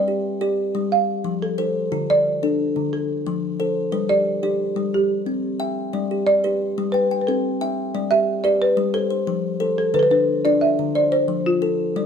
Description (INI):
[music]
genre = southern african traditional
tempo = 120 BPM (dotted quarters)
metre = 12/8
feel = straight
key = G mixolydian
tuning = A4 = 444 Hz
[part]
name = folk marimba with soft mallets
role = melody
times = 0.0-11.8 s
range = F4 to F5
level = -20 LUFS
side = right 1 dB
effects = none
[part]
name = kalimba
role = arpeggios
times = 0.0-12.1 s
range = D3 to G5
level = -22 LUFS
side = left 2 dB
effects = none
[sound]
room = light reverb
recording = close, detailed microphones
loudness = -18 LUFS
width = side -7 dB against mid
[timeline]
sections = 0.0-5.9 A section; 5.9-12.1 B section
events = none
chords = 0.0 G; 0.9 F; 1.9 Dm; 2.9 F; 3.9 G; 4.9 C; 5.9 G; 6.9 C; 7.9 G; 8.9 F; 10.0 Dm; 11.0 F